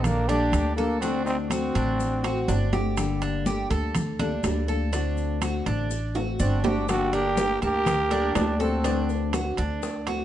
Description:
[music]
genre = latin, Cuban son and guajira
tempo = 123 BPM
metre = 4/4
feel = straight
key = G harmonic minor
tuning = A4 = 440 Hz
[part]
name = growling trombone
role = melody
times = 0.0-2.7, 6.4-9.1 s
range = Bb3 to G4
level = -26 LUFS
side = equal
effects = none
[part]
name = growling trumpet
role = second line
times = 0.0-2.7, 6.4-9.1 s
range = D4 to Bb4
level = -36 LUFS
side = right 5 dB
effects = none
[part]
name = nylon-string guitar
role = accompaniment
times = 0.0-10.2 s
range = D3 to A4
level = -30 LUFS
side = left 5 dB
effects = none
[part]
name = Cuban tres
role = arpeggios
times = 0.0-10.2 s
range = D4 to A5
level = -32 LUFS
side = right 4 dB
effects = none
[part]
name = upright bass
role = bass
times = 0.0-10.2 s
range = G1 to D2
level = -28 LUFS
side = equal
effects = none
[part]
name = congas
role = percussion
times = 0.0-10.2 s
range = none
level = -32 LUFS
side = left 1 dB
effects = none
[part]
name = maracas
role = percussion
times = 0.0-10.2 s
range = none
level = -43 LUFS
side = left 7 dB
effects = none
[part]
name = timbales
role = percussion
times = 0.0-10.2 s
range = none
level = -32 LUFS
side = right 5 dB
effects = none
[part]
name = bongos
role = percussion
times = 6.9-10.2 s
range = none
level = -36 LUFS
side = left 6 dB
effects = none
[sound]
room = light reverb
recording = dark, warm production, nothing above 10.6 kHz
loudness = -23 LUFS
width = side -12 dB against mid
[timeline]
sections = 0.0-10.2 A section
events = drum fill 6.2-6.9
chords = 0.0 Gmadd9; 1.0 D7; 3.0 Gmadd9; 4.9 D7; 6.9 Gmadd9; 8.8 D7

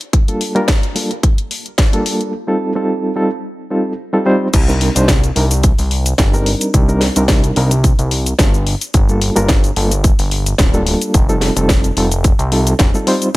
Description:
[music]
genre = nu-disco, nu disco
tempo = 109 BPM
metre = 4/4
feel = swing 54% on 16ths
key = C dorian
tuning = A4 = 440 Hz
[part]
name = house drum kit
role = drums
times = 0.0-13.4 s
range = crash cymbal, hi-hat, shaker, snare drum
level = -19 LUFS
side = left 1 dB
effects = high-pass filter on hats, high-pass filter on snare, high-pass filter on cymbals, high-pass filter on perc, high-pass filter on room
[part]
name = electronic kick drum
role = drums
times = 0.1-13.4 s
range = none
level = -13 LUFS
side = equal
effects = none
[part]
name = reed electric piano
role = accompaniment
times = 0.3-13.3 s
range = G3 to C5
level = -17 LUFS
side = equal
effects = fast tremolo, sidechain pumping, digital delay
[part]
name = fat analog bass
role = bass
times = 4.5-13.4 s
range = D1 to C2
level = -16 LUFS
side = equal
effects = tube saturation
[sound]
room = little or no reverb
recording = none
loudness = -12 LUFS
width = side -19 dB against mid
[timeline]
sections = 0.0-4.5 A section; 4.5-13.4 B section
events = build-up 0.0-4.5; drop 4.5-13.4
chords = 0.1 Gm7; 2.3 F7; 4.5 Cm7; 8.9 Gm7; 11.1 F7

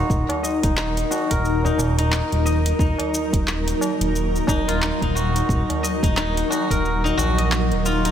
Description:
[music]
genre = organic downtempo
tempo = 89 BPM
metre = 4/4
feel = swing 60% on 16ths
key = Eb minor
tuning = A4 = 440 Hz
[part]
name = granular cloud pad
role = sustained chords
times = 0.0-8.1 s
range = Gb3 to Bb4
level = -24 LUFS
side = equal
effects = built-in reverb, sidechain pumping
[part]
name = steel-string zither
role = arpeggios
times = 0.0-8.1 s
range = Eb4 to Eb5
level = -25 LUFS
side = left 1 dB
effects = low-pass filter, tape echo
[part]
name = smooth gliding synth bass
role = bass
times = 0.0-8.1 s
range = Eb1 to Bb1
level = -23 LUFS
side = equal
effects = none
[part]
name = deep house drum kit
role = drums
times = 0.1-8.1 s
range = handclaps, hi-hat, shaker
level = -28 LUFS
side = equal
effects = small room ambience
[part]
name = electronic kick drum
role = drums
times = 0.1-6.8 s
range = none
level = -22 LUFS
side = equal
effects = small room ambience
[part]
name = tabla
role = percussion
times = 0.3-8.0 s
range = none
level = -32 LUFS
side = left 1 dB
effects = none
[sound]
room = moderate lush hall reverb, RT60 2.9 s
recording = none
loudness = -18 LUFS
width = side -9 dB against mid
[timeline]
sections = 0.0-8.1 A section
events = filter sweep on guzheng 0.0-8.1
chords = 0.0 Ebm

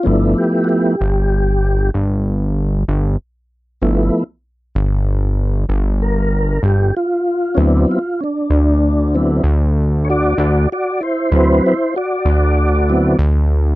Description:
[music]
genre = slow blues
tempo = 64 BPM (dotted quarters)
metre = 12/8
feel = straight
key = unclear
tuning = A4 = 440 Hz
[part]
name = tonewheel organ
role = sustained chords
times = 0.0-13.2 s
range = F3 to D5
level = -16 LUFS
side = equal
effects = chorus vibrato, slow rotary speaker
[part]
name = fat analog bass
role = bass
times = 0.1-13.8 s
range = G1 to D2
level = -14 LUFS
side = equal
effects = none
[sound]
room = little or no reverb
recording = dry, close 1970s-style studio recording, faint mains hum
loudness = -14 LUFS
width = side -18 dB against mid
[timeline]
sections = 0.0-13.8 A section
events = tonewheel organ solo 0.0-13.8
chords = 0.1 G13; 7.6 D13

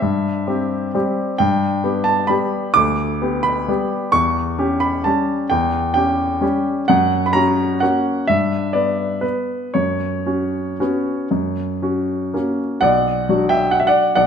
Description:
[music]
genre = classical, piano waltz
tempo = 112-143 BPM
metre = 3/4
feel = rubato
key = B minor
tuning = A4 = 442 Hz
[part]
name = clear baby grand piano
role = solo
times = 0.0-14.3 s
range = B1 to D6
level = -16 LUFS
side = equal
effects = none
[sound]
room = moderate recital hall reverb, RT60 1.5 s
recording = none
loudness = -16 LUFS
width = side -7 dB against mid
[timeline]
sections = 0.0-12.8 A section; 12.8-14.3 B section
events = none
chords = 0.0 C; 1.4 G; 4.1 C#dim/E; 6.9 F#; 8.3 G; 9.7 F#sus4; 11.3 F#; 12.8 Bm

